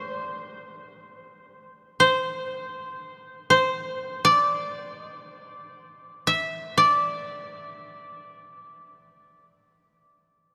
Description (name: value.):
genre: japanese traditional.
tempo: free time.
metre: none.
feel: none.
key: unclear.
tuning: A4 = 438 Hz.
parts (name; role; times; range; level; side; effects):
koto; solo; 0.0-10.5 s; C5 to E5; -24 LUFS; equal; none.
room: wet cathedral reverb, RT60 5.9 s.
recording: none.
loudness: -23 LUFS.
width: mono.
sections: 0.0-10.5 A section.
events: slowing down 7.6-10.5.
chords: none.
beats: free time.